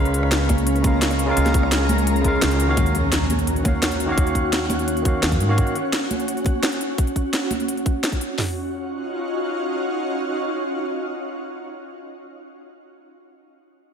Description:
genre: liquid drum and bass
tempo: 171 BPM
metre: 4/4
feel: straight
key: Eb minor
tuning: A4 = 439 Hz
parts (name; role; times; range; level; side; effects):
- barky tine electric piano; accompaniment; 0.0-5.8 s; Db3 to F5; -24 LUFS; equal; analog delay
- shimmering ambient pad; sustained chords; 0.0-12.0 s; Ab3 to Bb4; -25 LUFS; equal; chorus, built-in reverb
- upright bass; bass; 0.0-5.6 s; Db2 to Ab2; -23 LUFS; equal; tube saturation
- drum and bass drum kit; drums; 0.1-8.3 s; hi-hat, rim click, snare drum; -25 LUFS; left 1 dB; none
- drum and bass drum kit; drums; 0.5-8.5 s; hi-hat, kick drum, snare drum, toms; -21 LUFS; equal; none
- congas; percussion; 0.5-7.6 s; none; -29 LUFS; right 4 dB; none
- impact; sound effects; 2.8-4.2 s; none; -29 LUFS; left 1 dB; none
room: moderate lush hall reverb, RT60 1.9 s, digital ambience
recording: dreamy mix soaked in reverb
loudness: -19 LUFS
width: side -7 dB against mid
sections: 0.0-2.8 A section; 2.8-8.4 B section; 8.4-11.2 C section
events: drop 0.0-2.8; kick drops out 2.4-2.8; impact 2.8-4.2; filter sweep on ambient pad 2.8-8.4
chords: 0.0 Bbm7/Db; 2.8 Ebm9

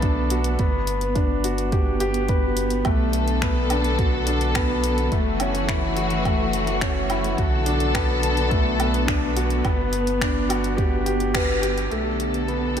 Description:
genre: piano and strings electronica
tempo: 106 BPM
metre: 4/4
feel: straight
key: B minor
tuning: A4 = 439 Hz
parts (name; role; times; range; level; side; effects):
- warm studio string section; sustained chords; 0.0-12.8 s; D3 to A4; -26 LUFS; equal; sidechain pumping
- clear grand piano; riff; 0.0-12.8 s; A3 to B4; -25 LUFS; left 2 dB; analog delay
- warm sub bass; bass; 0.0-12.8 s; F#1 to B1; -26 LUFS; right 1 dB; sidechain pumping
- deep house drum kit; drums; 0.0-12.8 s; finger snaps, hi-hat, woodblock; -30 LUFS; equal; none
- electronic kick drum; drums; 0.0-11.5 s; none; -24 LUFS; right 1 dB; none
- felt-muted upright piano; melody; 11.4-12.8 s; G4 to B4; -28 LUFS; equal; analog delay
room: moderate cathedral reverb, RT60 6.1 s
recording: dreamy mix soaked in reverb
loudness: -20 LUFS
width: side -8 dB against mid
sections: 0.0-11.9 A section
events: band accent 11.4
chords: 0.0 Bm7; 0.6 Gmaj7; 2.9 Bm7; 5.1 F#m7; 7.4 Bm7; 9.7 Gmaj7; 11.9 Bm7

